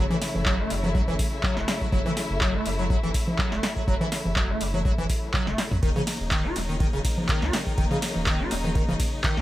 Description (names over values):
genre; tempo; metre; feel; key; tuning
acid house; 123 BPM; 4/4; swing 54% on 16ths; unclear; A4 = 440 Hz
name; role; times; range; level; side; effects
rich studio string section; sustained chords; 0.0-9.4 s; Db3 to Fb4; -32 LUFS; left 2 dB; sidechain pumping
liquid acid bass; riff; 0.0-9.4 s; Db3 to Gb4; -30 LUFS; equal; lush chorus, sidechain pumping, tape echo
warm sub bass; bass; 0.0-9.4 s; Eb1 to Db2; -31 LUFS; equal; sidechain pumping
electro analog drum machine; drums; 0.1-9.4 s; congas, handclaps, hi-hat, ride cymbal, snare drum, toms; -28 LUFS; right 1 dB; none
electronic kick drum; drums; 0.5-9.3 s; none; -26 LUFS; equal; none
room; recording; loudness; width
light reverb; none; -22 LUFS; side -15 dB against mid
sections
0.0-9.4 A section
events
drum fill 5.3-5.8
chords
0.0 Gbm7; 5.8 Ebm7